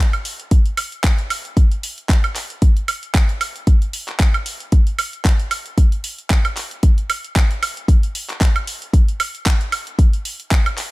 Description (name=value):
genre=nu-disco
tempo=114 BPM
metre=4/4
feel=swing 55% on 16ths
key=none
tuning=none
part: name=pop drum kit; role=drums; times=0.1-10.9 s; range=handclaps, hi-hat, woodblock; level=-23 LUFS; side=right 2 dB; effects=none
part: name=electronic kick drum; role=drums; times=0.5-10.6 s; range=none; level=-14 LUFS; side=equal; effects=none
room=little or no reverb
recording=none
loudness=-16 LUFS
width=side -20 dB against mid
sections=0.0-10.9 A section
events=none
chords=none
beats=0.52 1.04 | 1.57 2.10 2.62 3.15 | 3.67 4.20 4.73 5.25 | 5.78 6.31 6.83 7.36 | 7.88 8.41 8.94 9.46 | 9.99 10.52